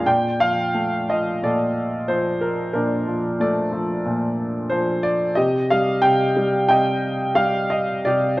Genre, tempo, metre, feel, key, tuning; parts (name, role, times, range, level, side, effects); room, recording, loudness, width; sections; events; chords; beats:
classical, lyrical solo piano; 90 BPM; 4/4; rubato; Bb major; A4 = 440 Hz
clear baby grand piano; solo; 0.0-8.4 s; Bb2 to G5; -18 LUFS; equal
moderate recital hall reverb, RT60 1.5 s; worn, warbling old tape, cassette tape, warbly pitch drift; -18 LUFS; side -19 dB against mid
0.1-8.4 A section
0.1 Bbmaj7; 5.4 Cm
| 0.05 0.74 1.42 2.08 | 2.74 3.40 4.04 4.70 | 5.37 6.03 6.69 7.37 | 8.04